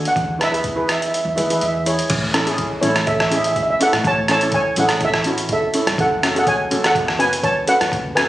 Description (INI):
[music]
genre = calypso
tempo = 124 BPM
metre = 4/4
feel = swing 54% on 16ths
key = A major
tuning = A4 = 439 Hz
[part]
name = steel pan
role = melody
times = 0.0-8.3 s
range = E4 to A5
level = -19 LUFS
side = right 1 dB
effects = none
[part]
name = steel pan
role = accompaniment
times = 0.0-8.2 s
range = C#4 to C#5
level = -23 LUFS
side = equal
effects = none
[part]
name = upright bass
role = bass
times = 0.0-8.3 s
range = F#1 to E3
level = -27 LUFS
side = equal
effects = none
[part]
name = trip hop sampler-style drum kit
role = drums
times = 0.1-8.3 s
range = crash cymbal, hi-hat, kick drum, rim click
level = -21 LUFS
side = equal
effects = none
[sound]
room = light reverb, small room ambience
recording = recorded on a phone in the room, studio reverb, compression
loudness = -16 LUFS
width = side -15 dB against mid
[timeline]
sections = 0.0-2.1 A section; 2.1-8.3 B section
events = kick and snare drop out 1.1-2.1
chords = 0.2 E; 2.1 A; 6.0 F#m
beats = | 0.15 0.64 1.13 1.62 | 2.10 2.59 3.07 3.56 | 4.04 4.53 5.01 5.50 | 5.98 6.46 6.94 7.43 | 7.91